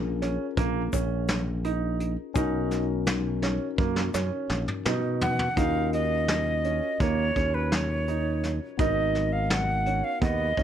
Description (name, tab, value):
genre	progressive instrumental, band music in an uneven meter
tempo	168 BPM (eighths)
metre	9/8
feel	straight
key	Eb minor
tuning	A4 = 441 Hz
part	barky tine electric piano	accompaniment	0.0-10.6 s	Cb4 to Bb4	-34 LUFS	left 12 dB	overdrive, plate reverb
part	modern bright fingered electric bass	bass	0.0-10.6 s	Ab1 to B2	-28 LUFS	equal	none
part	warm grand piano	arpeggios	0.2-10.6 s	Bb3 to Eb4	-32 LUFS	right 11 dB	plate reverb
part	soft brush drum kit	drums	0.2-10.6 s	hi-hat, kick drum, snare drum, toms	-29 LUFS	equal	none
part	egg shaker	percussion	0.9-5.4 s	none	-43 LUFS	left 17 dB	none
part	breathy bright concert flute	melody	5.2-10.6 s	Cb5 to F#5	-28 LUFS	right 2 dB	plate reverb, tape echo
room	moderate studio reverb, RT60 0.5 s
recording	none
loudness	-24 LUFS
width	side -10 dB against mid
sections	0.0-5.6 A section; 5.6-10.6 B section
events	drum fill 3.4-5.6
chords	0.0 Bbm7; 2.4 Bmaj7; 5.6 Ebm7; 8.8 Abm7